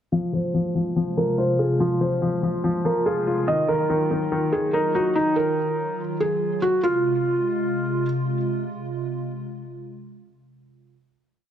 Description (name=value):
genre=hip hop, trap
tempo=143 BPM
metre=4/4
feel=half-time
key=F phrygian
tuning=A4 = 439 Hz
part: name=felt-muted upright piano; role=melody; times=0.1-8.1 s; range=Eb4 to F5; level=-23 LUFS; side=right 1 dB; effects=low-pass filter, tape echo
part: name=dark grand piano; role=accompaniment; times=0.1-6.0 s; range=Eb3 to F4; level=-24 LUFS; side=left 3 dB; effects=low-pass filter
part: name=hollow soft pad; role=sustained chords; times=0.1-11.0 s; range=C3 to F4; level=-28 LUFS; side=equal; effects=ensemble chorus, low-pass filter
room=light reverb, studio reverb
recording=none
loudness=-21 LUFS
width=side -9 dB against mid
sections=0.1-6.8 breakdown; 6.8-10.2 final chord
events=filter sweep 0.1-6.8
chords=0.1 Fm; 3.5 Ebmadd9; 6.8 Fm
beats=| 0.12 0.54 0.96 1.38 | 1.80 2.22 2.64 3.06 | 3.48 3.90 4.32 4.74 | 5.16 5.58 6.00 6.42 | 6.83 7.25 7.67 8.09 | 8.51 8.93 9.35 9.77